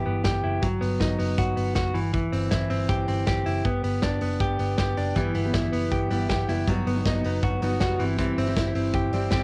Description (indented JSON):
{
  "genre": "jangly indie pop",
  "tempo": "159 BPM",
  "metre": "4/4",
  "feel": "straight",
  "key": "unclear",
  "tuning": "A4 = 441 Hz",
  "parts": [
    { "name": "direct-recorded clean electric guitar", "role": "arpeggios", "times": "0.0-9.4 s", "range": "E3 to G4", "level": "-29 LUFS", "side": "equal", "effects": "cassette tape, plate reverb" },
    { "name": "vintage muted picked electric bass", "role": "bass", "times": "0.0-9.4 s", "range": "F#1 to G1", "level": "-30 LUFS", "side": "equal", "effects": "none" },
    { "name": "loose indie drum kit", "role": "drums", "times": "0.2-9.4 s", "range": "hi-hat, kick drum, snare drum", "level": "-32 LUFS", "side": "equal", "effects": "cassette tape" },
    { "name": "picked steel-string acoustic guitar", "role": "accompaniment", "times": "5.2-9.4 s", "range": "G3 to G4", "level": "-32 LUFS", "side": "equal", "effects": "cassette tape, plate reverb" }
  ],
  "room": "light reverb",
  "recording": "home recording on cassette",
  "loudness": "-25 LUFS",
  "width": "mono",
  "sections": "0.0-9.4 A section",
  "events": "none",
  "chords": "0.0 Em; 0.6 B; 2.0 C/G; 3.7 G; 5.2 Em; 6.7 B; 8.0 C/G"
}